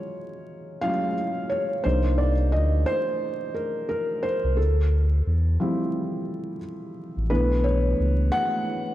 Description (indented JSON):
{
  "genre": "lo-fi hip hop",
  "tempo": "88 BPM",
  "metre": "4/4",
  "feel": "swing 58% on 16ths",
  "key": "unclear",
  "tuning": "A4 = 439 Hz",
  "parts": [
    { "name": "felt-muted upright piano", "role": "accompaniment", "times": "0.0-8.9 s", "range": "E3 to F#5", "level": "-25 LUFS", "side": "equal", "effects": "none" },
    { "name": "sub bass with octave", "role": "bass", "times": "1.9-8.3 s", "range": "A1 to E2", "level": "-21 LUFS", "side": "equal", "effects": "none" }
  ],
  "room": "moderate plate reverb, RT60 3.2 s",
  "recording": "dreamy mix soaked in reverb, vinyl crackle",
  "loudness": "-22 LUFS",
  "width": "side -14 dB against mid",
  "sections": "0.0-8.9 A section",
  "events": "break 0.0-1.8; felt piano solo 0.0-8.9",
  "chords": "0.0 Ebm11 (rootless); 1.8 Cm11; 4.6 Dm11; 7.3 Bm11"
}